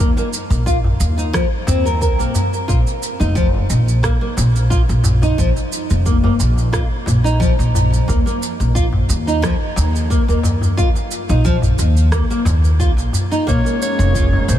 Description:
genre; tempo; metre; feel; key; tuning
organic downtempo; 89 BPM; 4/4; swing 54% on 16ths; unclear; A4 = 441 Hz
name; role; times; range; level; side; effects
nylon-string guitar; arpeggios; 0.0-14.3 s; F3 to Bb4; -21 LUFS; equal; lush chorus, tape echo
upright bass; bass; 0.0-14.6 s; F1 to Eb2; -16 LUFS; equal; sidechain pumping
electronic shaker and rim click; drums; 0.2-14.6 s; none; -28 LUFS; right 3 dB; none
darbuka; percussion; 0.2-14.6 s; none; -24 LUFS; left 1 dB; none
electronic kick drum; drums; 0.7-14.3 s; none; -18 LUFS; equal; none
mellow clarinet; melody; 13.5-14.6 s; C5 to Db5; -22 LUFS; left 2 dB; none
airy breathy pad; sustained chords; 13.5-14.6 s; Ab3 to Db4; -23 LUFS; right 3 dB; chorus, sidechain pumping
room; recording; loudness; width
light reverb; none; -14 LUFS; side -11 dB against mid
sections
0.0-14.6 A section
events
none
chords
0.0 Eb5; 2.7 Bb5; 8.1 Eb5; 13.5 Bbm7

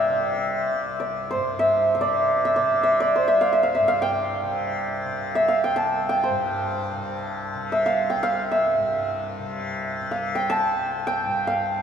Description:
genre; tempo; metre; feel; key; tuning
indian classical, Hindustani; free time; none; none; C raga khamaj; A4 = 440 Hz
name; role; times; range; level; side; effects
santur; melody; 0.0-11.8 s; C5 to A5; -21 LUFS; right 1 dB; none
tanpura; drone; 0.0-11.8 s; C2 to C3; -30 LUFS; left 2 dB; none
room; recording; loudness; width
wet cathedral reverb, RT60 4.5 s; recorded in a church or concert hall; -21 LUFS; side -8 dB against mid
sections
0.0-11.8 A section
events
none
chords
none

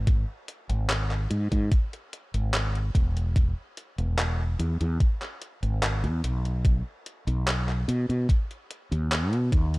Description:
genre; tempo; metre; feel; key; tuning
vaporwave; 73 BPM; 4/4; straight; unclear; A4 = 440 Hz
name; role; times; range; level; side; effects
mellow fretless electric bass; bass; 0.0-9.8 s; E1 to B2; -26 LUFS; equal; tube saturation
electronic kick drum; drums; 0.1-9.7 s; none; -22 LUFS; equal; overdrive
gated 80s digital drum machine; drums; 0.1-9.8 s; handclaps, hi-hat; -32 LUFS; equal; gated reverb, overdrive
room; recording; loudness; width
little or no reverb; none; -24 LUFS; side -23 dB against mid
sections
0.0-9.8 A section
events
none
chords
none

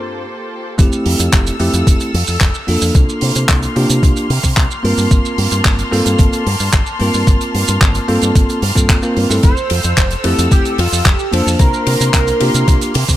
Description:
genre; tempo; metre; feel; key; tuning
nu-disco, nu disco; 111 BPM; 4/4; straight; unclear; A4 = 440 Hz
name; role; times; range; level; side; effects
bell-like tine electric piano; accompaniment; 0.0-12.9 s; G2 to C5; -18 LUFS; right 1 dB; none
clear symphonic string section; sustained chords; 0.0-13.2 s; Bb3 to F6; -24 LUFS; left 3 dB; sidechain pumping
fingered electric bass with an envelope filter; bass; 0.8-13.2 s; F1 to C3; -17 LUFS; equal; none
electronic kick drum; drums; 0.8-13.2 s; none; -12 LUFS; equal; none
tight metal drum kit; drums; 0.8-13.2 s; handclaps, hi-hat, ride cymbal, shaker; -19 LUFS; right 2 dB; none
wide unison lead; melody; 9.4-13.2 s; F4 to C5; -20 LUFS; right 1 dB; lush chorus, dub echo
room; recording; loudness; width
small room ambience; none; -11 LUFS; side -14 dB against mid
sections
0.8-13.2 A section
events
break 0.2-0.8; drop 0.8-13.2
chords
0.0 Gm11; 0.8 Fmaj7; 3.0 C7sus4; 4.8 Gm11; 9.4 Fmaj7; 11.6 C7sus4

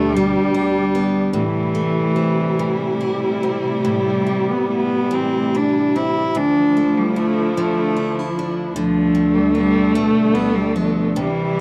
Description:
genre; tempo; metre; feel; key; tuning
celtic folk, Celtic slow air; 49 BPM (dotted quarters); 6/8; uneven beats, rubato; unclear; A4 = 438 Hz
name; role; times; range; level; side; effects
rich cello; melody; 0.0-11.6 s; E3 to E4; -22 LUFS; equal; none
dark viola; second line; 0.0-11.6 s; F3 to A3; -24 LUFS; equal; none
picked steel-string acoustic guitar; accompaniment; 0.0-11.6 s; D2 to E4; -25 LUFS; equal; none
rich chamber string section; sustained chords; 0.0-11.6 s; D2 to E4; -29 LUFS; equal; none
room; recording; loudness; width
small room reverb; dry, close 1970s-style studio recording; -18 LUFS; mono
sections
0.0-11.6 A section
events
none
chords
0.0 G/D; 1.3 Am; 6.4 Dmadd9; 8.8 G/D

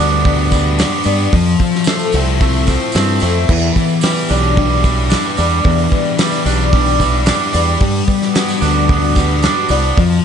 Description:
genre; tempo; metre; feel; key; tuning
rock, shoegaze and dream pop; 111 BPM; 4/4; straight; unclear; A4 = 441 Hz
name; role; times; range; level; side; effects
fingerpicked twelve-string acoustic guitar; arpeggios; 0.0-10.0 s; B3 to A4; -22 LUFS; left 7 dB; analog chorus, analog delay
thick fuzz guitar; riff; 0.0-10.2 s; E3 to C5; -18 LUFS; left 10 dB; distortion, wide subtle chorus
twangy electric guitar; riff; 0.0-10.2 s; E2 to D4; -19 LUFS; right 16 dB; reverse reverb
growling fingered electric bass; bass; 0.0-10.2 s; B1 to G2; -16 LUFS; right 1 dB; overdrive
loose indie drum kit; drums; 0.3-10.1 s; crash cymbal, hi-hat, kick drum, snare drum; -17 LUFS; right 1 dB; none
tambourine; percussion; 0.5-10.2 s; none; -30 LUFS; right 10 dB; none
room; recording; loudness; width
small room ambience; nothing above 10.8 kHz; -12 LUFS; side -8 dB against mid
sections
0.0-10.2 A section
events
none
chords
0.0 Gmaj7; 1.3 Fmaj7; 3.5 Em7; 7.8 Gmaj7

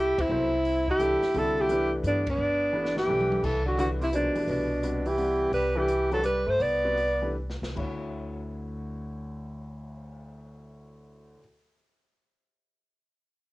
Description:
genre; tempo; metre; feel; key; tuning
modal jazz; 145-172 BPM; 3/4; swing 65% on 8ths; unclear; A4 = 440 Hz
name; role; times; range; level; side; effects
warm alto saxophone; melody; 0.0-7.4 s; D4 to D5; -25 LUFS; equal; cassette tape
breathy tenor saxophone; second line; 0.0-7.4 s; B2 to E4; -32 LUFS; right 2 dB; cassette tape
upright bass; bass; 0.0-11.3 s; G1 to G2; -34 LUFS; equal; none
open jazz drum kit; drums; 0.2-10.2 s; crash cymbal, cymbal swell, hi-hat, kick drum, ride cymbal, snare drum, toms; -39 LUFS; equal; cassette tape
warm grand piano; accompaniment; 0.3-11.4 s; D2 to F#5; -35 LUFS; left 2 dB; cassette tape
room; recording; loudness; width
light reverb; home recording on cassette; -24 LUFS; side -19 dB against mid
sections
0.0-3.4 A section; 3.4-7.8 B section; 7.8-10.2 C section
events
band accent 0.1, 2.2; drum fill 2.7-3.4, 7.4-7.8; slowing down 5.5-7.8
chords
0.0 Cmaj9; 7.8 Dmaj9

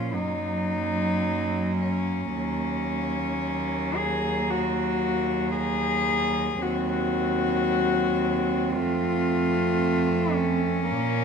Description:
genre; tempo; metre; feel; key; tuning
classical, lyrical piece for cello ensemble; 56 BPM; 4/4; rubato; unclear; A4 = 439 Hz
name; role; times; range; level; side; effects
rich cello; melody; 0.0-11.2 s; Db4 to Ab4; -27 LUFS; left 7 dB; none
warm cello; second line; 0.0-11.2 s; Bb3 to Db4; -30 LUFS; right 9 dB; none
clear cello; accompaniment; 0.0-11.2 s; F3 to Bb3; -31 LUFS; equal; none
warm cello; bass; 0.0-11.2 s; Eb2 to Bb2; -29 LUFS; right 3 dB; none
room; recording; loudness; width
moderate recital hall reverb, RT60 1.5 s; none; -23 LUFS; side -6 dB against mid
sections
0.0-11.2 A section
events
none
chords
0.1 Gb; 2.4 Ebm7; 8.8 F

